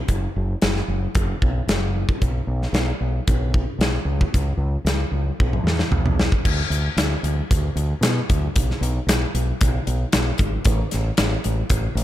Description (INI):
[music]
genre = classic rock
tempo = 114 BPM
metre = 4/4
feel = straight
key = unclear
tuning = A4 = 439 Hz
[part]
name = growling fingered electric bass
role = bass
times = 0.1-12.0 s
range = F#1 to B2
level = -22 LUFS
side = equal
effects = overdrive
[part]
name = big rock drum kit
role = drums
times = 0.1-12.0 s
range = crash cymbal, hi-hat, kick drum, snare drum, toms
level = -21 LUFS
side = equal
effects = none
[sound]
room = little or no reverb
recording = none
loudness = -19 LUFS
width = side -13 dB against mid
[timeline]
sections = 0.0-6.5 A section; 6.5-12.0 B section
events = drum fill 5.4-6.5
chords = none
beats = | 0.08 0.62 1.15 1.68 | 2.22 2.75 3.28 3.81 | 4.34 4.87 5.40 5.93 | 6.45 6.98 7.51 8.03 | 8.56 9.08 9.61 10.13 | 10.65 11.18 11.70